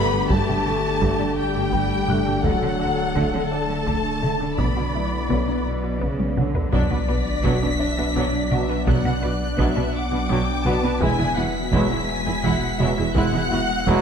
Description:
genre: cinematic, hybrid orchestral and electronic film score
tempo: 56 BPM (dotted quarters)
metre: 6/8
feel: straight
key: B minor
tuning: A4 = 440 Hz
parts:
  - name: warm symphonic violin section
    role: melody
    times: 0.0-14.0 s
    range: F#5 to B6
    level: -30 LUFS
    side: left 3 dB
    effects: none
  - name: warm symphonic violin section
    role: second line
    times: 0.0-14.0 s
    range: D5 to B5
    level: -30 LUFS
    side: left 2 dB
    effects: none
  - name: warm symphonic viola section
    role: accompaniment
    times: 0.0-14.0 s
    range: F#3 to D5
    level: -29 LUFS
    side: equal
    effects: none
  - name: airy breathy pad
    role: sustained chords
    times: 0.0-14.0 s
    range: D3 to E5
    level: -28 LUFS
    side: left 1 dB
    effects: chorus
  - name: clear French horn section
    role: sustained chords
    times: 0.0-14.0 s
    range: F#3 to E4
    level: -30 LUFS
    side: left 4 dB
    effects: none
  - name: dark trombone section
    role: sustained chords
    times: 0.0-14.0 s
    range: B2 to C#4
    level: -31 LUFS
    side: right 3 dB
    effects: none
  - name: resonant blip pluck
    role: arpeggios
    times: 0.0-14.0 s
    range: D3 to B4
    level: -31 LUFS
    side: left 1 dB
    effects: phaser
  - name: pure sine sub bass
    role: bass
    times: 0.0-14.0 s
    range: D1 to B1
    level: -30 LUFS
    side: equal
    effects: none
  - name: rich symphonic cello section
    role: bass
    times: 0.0-13.9 s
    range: E2 to D3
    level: -29 LUFS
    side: right 3 dB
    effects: none
  - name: bright baby grand piano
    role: texture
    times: 0.0-14.0 s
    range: D4 to F#6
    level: -35 LUFS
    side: left 1 dB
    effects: none
  - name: rich studio double bass section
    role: bass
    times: 0.3-13.9 s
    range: E1 to D2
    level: -29 LUFS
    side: right 4 dB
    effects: none
  - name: taiko ensemble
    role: drums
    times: 0.3-14.0 s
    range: none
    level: -27 LUFS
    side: equal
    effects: none
  - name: sub drop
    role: sound effects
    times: 6.8-8.9 s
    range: none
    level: -29 LUFS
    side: equal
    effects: none
room: wet concert hall reverb, RT60 2.3 s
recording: none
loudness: -19 LUFS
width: side -7 dB against mid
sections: 0.0-6.7 A section; 6.7-14.0 B section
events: drum fill 6.2-6.7; impact 6.7-8.9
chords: 0.0 Gsus2; 2.4 D; 4.6 Bmadd9; 6.7 Bm; 11.0 Eadd9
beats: | 0.30 1.38 | 2.45 3.52 | 4.59 5.66 | 6.73 7.80 | 8.88 9.95 | 11.02 12.09 | 13.16

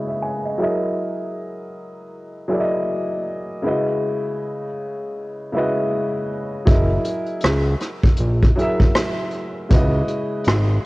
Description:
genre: lo-fi hip hop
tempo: 79 BPM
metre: 4/4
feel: swing 61% on 16ths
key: unclear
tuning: A4 = 440 Hz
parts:
  - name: dark upright piano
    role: accompaniment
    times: 0.0-10.9 s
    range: C#3 to G#5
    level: -22 LUFS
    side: equal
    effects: cassette tape, low-pass filter
  - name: fat analog bass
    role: bass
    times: 6.7-10.8 s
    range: F#1 to C#2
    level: -18 LUFS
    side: equal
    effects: none
  - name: vintage brush drum kit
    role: drums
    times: 6.7-10.7 s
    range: hi-hat, kick drum, rim click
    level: -17 LUFS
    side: equal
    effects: cassette tape
room: light reverb, studio reverb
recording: home recording on cassette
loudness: -18 LUFS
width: side -21 dB against mid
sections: 0.0-6.7 A section; 6.7-10.9 B section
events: filter sweep on upright piano 0.0-6.7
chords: 0.0 C#m11; 0.6 F#13; 3.6 C#m11; 6.7 F#13; 9.7 C#m11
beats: | 0.59 1.35 2.11 2.87 | 3.63 4.39 5.15 5.91 | 6.67 7.43 8.19 8.95 | 9.71 10.46

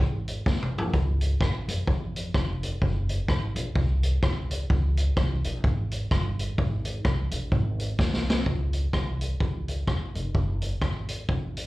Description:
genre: ska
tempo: 128 BPM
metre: 4/4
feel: swing 59% on 8ths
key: Db major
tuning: A4 = 440 Hz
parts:
  - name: upright bass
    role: bass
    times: 0.0-11.7 s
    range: F1 to Ab2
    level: -29 LUFS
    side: equal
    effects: none
  - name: street-band drum kit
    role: drums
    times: 0.3-11.7 s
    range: hi-hat, kick drum, rim click, snare drum, toms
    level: -26 LUFS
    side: equal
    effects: slapback echo
room: little or no reverb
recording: live gig heard through the venue's PA, club reverb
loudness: -24 LUFS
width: side -19 dB against mid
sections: 0.0-8.5 A section; 8.5-11.7 B section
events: drum fill 0.5-0.9, 8.0-8.5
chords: none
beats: 0.46 | 0.93 1.41 1.88 2.35 | 2.82 3.29 3.76 4.23 | 4.70 5.17 5.64 6.11 | 6.58 7.05 7.52 7.99 | 8.46 8.94 9.41 9.88 | 10.35 10.82 11.29

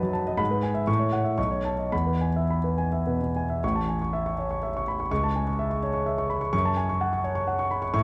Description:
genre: classical, romantic character piece for solo piano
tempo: 102-132 BPM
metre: 3/4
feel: rubato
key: E major, A major from 3.6 s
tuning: A4 = 440 Hz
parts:
  - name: warm concert grand piano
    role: solo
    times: 0.0-8.0 s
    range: A1 to C#6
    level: -26 LUFS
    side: equal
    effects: none
room: wet recital hall reverb, RT60 1.6 s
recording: dark, warm production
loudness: -26 LUFS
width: mono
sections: 0.0-3.6 A section; 3.6-8.0 B section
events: none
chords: 0.4 E/G#; 0.9 F#m7/A; 1.4 B9; 1.9 E; 3.6 A; 5.1 A/C#; 6.5 F#m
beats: | 0.40 0.88 1.38 | 1.92 2.48 3.06 | 3.63 4.13 4.61 | 5.11 5.58 6.06 | 6.53 7.01 7.48 | 7.94

